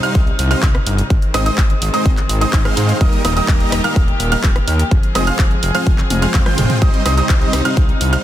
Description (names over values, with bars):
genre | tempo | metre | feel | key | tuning
EDM, festival progressive house | 126 BPM | 4/4 | straight | C minor | A4 = 444 Hz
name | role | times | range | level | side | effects
warm studio string section | sustained chords | 0.0-8.2 s | C3 to Ab4 | -25 LUFS | left 2 dB | sidechain pumping
warm baby grand piano | arpeggios | 0.0-8.2 s | Eb6 to G6 | -23 LUFS | right 4 dB | sidechain pumping, tape echo
big supersaw lead | riff | 0.0-8.2 s | G3 to G5 | -21 LUFS | equal | sidechain pumping, tape echo
big-room dance drum kit | drums | 0.0-8.2 s | handclaps, hi-hat, rim click, toms | -23 LUFS | equal | overdrive
fat analog bass | bass | 0.2-8.2 s | Eb1 to Ab2 | -19 LUFS | equal | sidechain pumping
electronic kick drum | drums | 0.2-7.9 s | none | -14 LUFS | equal | none
room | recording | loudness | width
digital ambience | dense, heavily limited modern master | -13 LUFS | side -12 dB against mid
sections
0.0-8.2 A section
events
drum fill 6.1-6.8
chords
0.0 Cm; 1.1 Ab; 3.0 Eb; 4.9 Fm; 6.8 Cm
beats
0.15 0.63 | 1.10 1.58 2.06 2.53 | 3.01 3.48 3.96 4.44 | 4.91 5.39 5.87 6.34 | 6.82 7.29 7.77